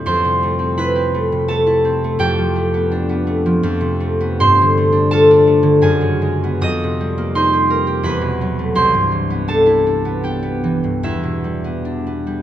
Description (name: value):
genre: classical, solo harp piece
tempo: 70-87 BPM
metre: 3/4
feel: rubato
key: unclear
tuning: A4 = 440 Hz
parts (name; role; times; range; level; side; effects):
- concert harp; solo; 0.0-12.4 s; C2 to Eb6; -14 LUFS; equal; none
room: light reverb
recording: close, detailed microphones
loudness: -14 LUFS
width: side -11 dB against mid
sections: 0.0-12.4 A section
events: none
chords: 0.0 Fmaj9; 2.2 G9/F; 3.6 Amadd9/F; 4.4 G9sus4; 5.8 F#sus24; 6.6 F9sus4; 8.0 Esus24; 8.8 Cmaj9; 11.1 Em7